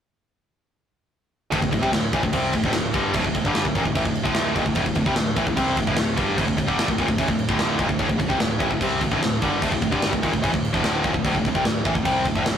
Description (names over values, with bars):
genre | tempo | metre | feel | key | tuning
heavy metal | 148 BPM | 4/4 | straight | unclear | A4 = 440 Hz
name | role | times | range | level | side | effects
tight distorted guitar | riff | 1.5-12.6 s | D2 to C4 | -22 LUFS | equal | distortion
fuzz picked electric bass | bass | 1.5-12.6 s | D1 to C2 | -30 LUFS | equal | overdrive
tight metal drum kit | drums | 1.5-12.6 s | crash cymbal, kick drum, snare drum | -24 LUFS | equal | none
room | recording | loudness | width
light reverb | rough rehearsal-room recording, tube saturation | -20 LUFS | side -8 dB against mid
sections
1.5-12.6 A section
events
none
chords
1.5 D5